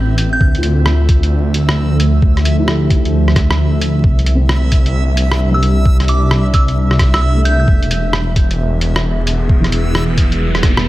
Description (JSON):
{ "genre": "future garage", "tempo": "132 BPM", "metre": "4/4", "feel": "swing 64% on 16ths", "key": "unclear", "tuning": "A4 = 437 Hz", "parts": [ { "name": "felt-muted upright piano", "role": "accompaniment", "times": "0.0-10.9 s", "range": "E3 to B4", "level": "-24 LUFS", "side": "left 1 dB", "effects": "sidechain pumping, tape echo" }, { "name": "warbly tape-like pad", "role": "sustained chords", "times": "0.0-10.9 s", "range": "A2 to E5", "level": "-20 LUFS", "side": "right 1 dB", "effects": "chorus, built-in reverb, sidechain pumping" }, { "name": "swelling detuned saw bass", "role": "bass", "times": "0.0-10.9 s", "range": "E1 to D2", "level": "-14 LUFS", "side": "equal", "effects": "sidechain pumping" }, { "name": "backwards swelling texture", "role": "texture", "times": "0.0-10.9 s", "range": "E5", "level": "-29 LUFS", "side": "right 2 dB", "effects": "built-in reverb" }, { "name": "lo-fi sampler-style drum kit", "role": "drums", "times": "0.2-10.8 s", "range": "hi-hat, rim click", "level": "-20 LUFS", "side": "equal", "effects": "studio reverb" }, { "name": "soft synth bell", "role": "melody", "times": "0.3-0.5, 5.5-7.6 s", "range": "D6 to G6", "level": "-22 LUFS", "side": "right 1 dB", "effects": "chorus, analog delay" }, { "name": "electronic kick drum", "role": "drums", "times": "0.4-10.7 s", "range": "none", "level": "-12 LUFS", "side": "equal", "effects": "studio reverb" }, { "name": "riser", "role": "sound effects", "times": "8.6-10.9 s", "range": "none", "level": "-26 LUFS", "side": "right 2 dB", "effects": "none" } ], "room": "light reverb, digital ambience", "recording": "vinyl crackle", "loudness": "-11 LUFS", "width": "side -16 dB against mid", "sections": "0.0-10.9 A section", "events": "riser 8.6-10.9", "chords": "0.4 Dmadd9; 4.0 C; 7.7 E" }